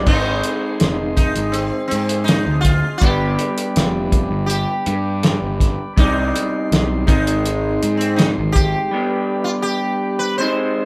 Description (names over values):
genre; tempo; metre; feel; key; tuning
psychedelic rock; 81 BPM; 4/4; straight; unclear; A4 = 440 Hz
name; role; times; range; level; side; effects
combo organ; sustained chords; 0.0-10.9 s; Ab3 to C6; -33 LUFS; equal; spring reverb
electric guitar through a small old amp; riff; 0.0-10.9 s; C3 to D5; -25 LUFS; equal; none
fuzz picked electric bass; bass; 0.0-8.7 s; F1 to Ab2; -24 LUFS; equal; overdrive
sitar; melody; 0.1-10.9 s; C4 to C5; -26 LUFS; equal; none
cloth-damped thuddy drum kit; drums; 0.1-8.7 s; crash cymbal, hi-hat, kick drum, snare drum; -20 LUFS; equal; none
room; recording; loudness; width
moderate studio reverb, RT60 0.6 s; band playing live in one room; -18 LUFS; mono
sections
0.1-10.9 A section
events
break 8.9-10.9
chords
0.1 Ab; 3.0 G; 6.0 Cmadd9; 7.1 Ab; 8.9 G